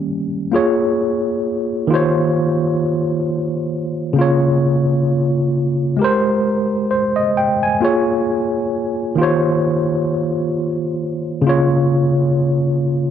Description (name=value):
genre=hip hop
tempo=66 BPM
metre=4/4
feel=swing 57% on 16ths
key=unclear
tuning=A4 = 440 Hz
part: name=tine electric piano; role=solo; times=0.0-13.1 s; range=Db3 to Ab5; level=-15 LUFS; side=equal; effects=overdrive, fast stereo tremolo, cassette tape, low-pass filter
room=light reverb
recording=nothing above 10.7 kHz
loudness=-15 LUFS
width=side -9 dB against mid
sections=0.5-13.1 A section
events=none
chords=0.0 Eb7; 0.5 Bbm7; 1.9 Eb13; 4.2 Db6; 6.0 Abmaj9; 7.8 Bbm7; 9.2 Eb13; 11.5 Db6